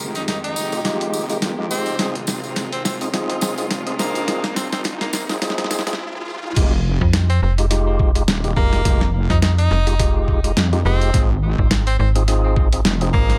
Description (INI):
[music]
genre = glitch hop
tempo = 105 BPM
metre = 4/4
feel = swing 56% on 16ths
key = F minor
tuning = A4 = 442 Hz
[part]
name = bright studio string section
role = sustained chords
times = 0.0-6.0 s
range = C3 to G4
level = -33 LUFS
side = equal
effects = sidechain pumping, low-pass filter
[part]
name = wobble bass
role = bass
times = 0.0-13.1 s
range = Eb1 to F2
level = -26 LUFS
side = equal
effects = chorus, tube saturation, high-pass filter
[part]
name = tambourine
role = percussion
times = 0.0-6.0 s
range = none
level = -33 LUFS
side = equal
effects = tape echo
[part]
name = riser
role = sound effects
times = 1.4-6.6 s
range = none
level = -35 LUFS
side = equal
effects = none
[part]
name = edgy tenor saxophone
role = melody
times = 0.2-13.4 s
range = Bb3 to Eb4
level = -29 LUFS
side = equal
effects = tape echo
[part]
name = boom bap sampler-style drum kit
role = drums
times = 0.2-13.4 s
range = crash cymbal, hi-hat, snare drum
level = -26 LUFS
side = equal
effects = tape echo
[part]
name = tonewheel organ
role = stabs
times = 0.7-13.4 s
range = Ab3 to Ab4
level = -28 LUFS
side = equal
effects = overdrive, fast rotary speaker, sidechain pumping, low-pass filter, tape echo
[part]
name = electronic kick drum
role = drums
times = 6.6-13.3 s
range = none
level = -21 LUFS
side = equal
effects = none
[part]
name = slap-like FM bass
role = bass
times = 7.0-13.4 s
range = F1 to F2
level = -20 LUFS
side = equal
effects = tube saturation
[sound]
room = light reverb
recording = echo-heavy mix, high-pass filter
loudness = -19 LUFS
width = mono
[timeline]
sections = 0.0-6.6 A section; 6.6-13.4 B section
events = build-up 0.0-6.6; drum fill 0.0-6.0; stop 6.0-6.6; drop 6.6-13.4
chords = 0.0 Fm9; 2.0 Ab6; 6.6 Fm9; 11.1 Ab6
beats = 0.28 0.85 1.42 | 1.99 2.56 3.14 3.71 | 4.28 4.85 5.42 5.99 | 6.56 7.14 7.71 8.28 | 8.85 9.42 9.99 10.56 | 11.14 11.71 12.28 12.85